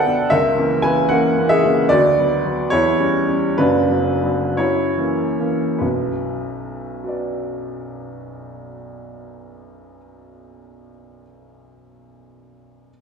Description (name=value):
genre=classical, romantic character piece for solo piano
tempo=46-79 BPM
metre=2/4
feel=rubato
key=B minor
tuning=A4 = 439 Hz
part: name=warm upright piano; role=solo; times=0.0-12.9 s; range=F#1 to G#5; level=-17 LUFS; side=equal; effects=none
room=wet recital hall reverb, RT60 1.6 s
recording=heard from further back in the room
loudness=-16 LUFS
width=side -6 dB against mid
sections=0.0-5.8 A section; 5.8-10.7 B section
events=slowing down 1.1-5.8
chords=0.3 A#dim/C#; 1.9 Bm/D; 2.7 C#dim/E; 3.6 Bm/F#; 4.6 F#7; 5.8 Bm